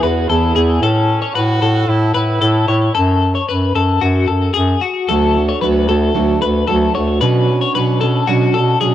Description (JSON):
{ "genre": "indie pop", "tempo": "113 BPM", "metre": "4/4", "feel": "straight", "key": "A major", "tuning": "A4 = 440 Hz", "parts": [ { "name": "warm velvety synth lead", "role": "melody", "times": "0.0-0.6 s", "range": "B4", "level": "-28 LUFS", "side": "left 3 dB", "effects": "none" }, { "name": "clear trumpet", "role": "second line", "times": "0.0-3.2 s", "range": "C#4 to F#4", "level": "-24 LUFS", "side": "right 7 dB", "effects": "cassette tape" }, { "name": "fingerpicked plugged-in steel-string acoustic guitar", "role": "accompaniment", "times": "0.0-0.8, 5.1-8.9 s", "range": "B2 to G#4", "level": "-20 LUFS", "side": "right 8 dB", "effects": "cassette tape" }, { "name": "twelve-string electric guitar", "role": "arpeggios", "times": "0.0-8.9 s", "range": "F#4 to C#5", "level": "-18 LUFS", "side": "left 7 dB", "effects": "tremolo, cassette tape, tape echo" }, { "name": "mellow bass clarinet", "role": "bass", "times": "0.0-8.9 s", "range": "D2 to B2", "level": "-15 LUFS", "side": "equal", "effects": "none" } ], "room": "light reverb", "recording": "home recording on cassette", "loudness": "-12 LUFS", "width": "side -12 dB against mid", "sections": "0.8-8.9 A section", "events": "none", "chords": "0.0 E; 0.8 A; 3.0 F#m; 5.1 D; 7.2 Bmadd9", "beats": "0.30 | 0.83 1.36 1.89 2.42 | 2.96 3.49 4.02 4.55 | 5.08 5.62 6.15 6.68 | 7.21 7.74 8.28 8.81" }